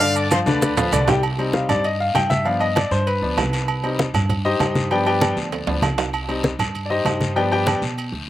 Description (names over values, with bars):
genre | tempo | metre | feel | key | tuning
latin, salsa | 196 BPM | 4/4 | straight | C harmonic minor | A4 = 440 Hz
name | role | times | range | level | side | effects
bright trumpet section | melody | 0.0-1.0 s | B4 to D6 | -23 LUFS | equal | slapback echo
bright baby grand piano | accompaniment | 0.0-7.8 s | D3 to G5 | -21 LUFS | left 2 dB | slapback echo
upright bass | bass | 0.0-8.3 s | C2 to B2 | -25 LUFS | right 1 dB | none
agogo bells and timbales | percussion | 0.0-8.1 s | none | -26 LUFS | right 7 dB | slapback echo
congas | percussion | 0.0-8.3 s | none | -24 LUFS | equal | none
guiro | percussion | 0.0-8.3 s | none | -32 LUFS | left 6 dB | slapback echo
maracas | percussion | 0.0-1.2 s | none | -31 LUFS | right 7 dB | none
room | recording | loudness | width
little or no reverb | recorded outdoors, with no room sound | -18 LUFS | side -13 dB against mid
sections
0.0-1.2 A section; 1.2-8.3 B section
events
drum fill 0.5-1.2, 5.5-6.1; grand piano solo 1.2-8.3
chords
0.0 G7; 1.2 Cm; 2.5 G7; 3.7 Cm; 4.9 G7; 6.1 Cm; 7.4 G7